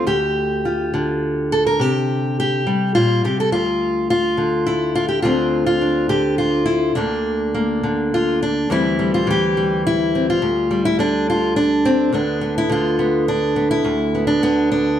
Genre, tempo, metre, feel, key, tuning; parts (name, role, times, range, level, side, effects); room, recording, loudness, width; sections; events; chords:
folk, solo fingerstyle acoustic guitar; 104 BPM; 3/4; straight; D minor; A4 = 440 Hz
fingerpicked steel-string acoustic guitar; solo; 0.0-15.0 s; D2 to Bb4; -16 LUFS; equal; slapback echo
light reverb; dry, close 1970s-style studio recording; -16 LUFS; side -10 dB against mid
0.0-8.7 A section; 8.7-15.0 B section
0.1 G5/D; 1.8 Csus2; 3.5 N.C.; 5.2 Dm7; 6.9 Bb/D; 8.7 Cadd9/D; 12.1 Dm69